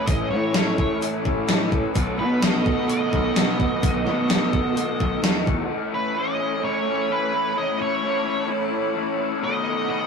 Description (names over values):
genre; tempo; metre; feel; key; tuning
rock, shoegaze and dream pop; 128 BPM; 4/4; straight; A lydian; A4 = 440 Hz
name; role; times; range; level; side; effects
octave-fuzz lead guitar; melody; 0.0-10.1 s; B4 to D#5; -28 LUFS; equal; distortion
hollow soft pad; sustained chords; 0.0-10.1 s; A4 to B5; -28 LUFS; right 3 dB; chorus
fingerpicked twelve-string acoustic guitar; arpeggios; 0.0-5.7 s; A4 to B4; -34 LUFS; left 1 dB; analog delay
biting overdriven guitar; riff; 0.0-5.7 s; A2 to A4; -30 LUFS; right 7 dB; none
raw garage guitar; riff; 0.0-10.1 s; A2 to F#4; -27 LUFS; left 6 dB; overdrive
fuzz fingered electric bass; bass; 0.1-5.6 s; A1 to B2; -26 LUFS; equal; overdrive
gated 80s digital drum machine; drums; 0.1-5.6 s; hi-hat, kick drum, snare drum; -22 LUFS; equal; gated reverb, gated reverb snare, overdrive
room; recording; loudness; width
moderate small room reverb, RT60 0.5 s; rough rehearsal-room recording, lossy compression artefacts; -20 LUFS; side -5 dB against mid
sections
0.0-5.7 A section; 5.7-10.1 B section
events
none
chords
0.0 Amaj9; 2.0 B7; 5.7 Amaj9; 9.4 B7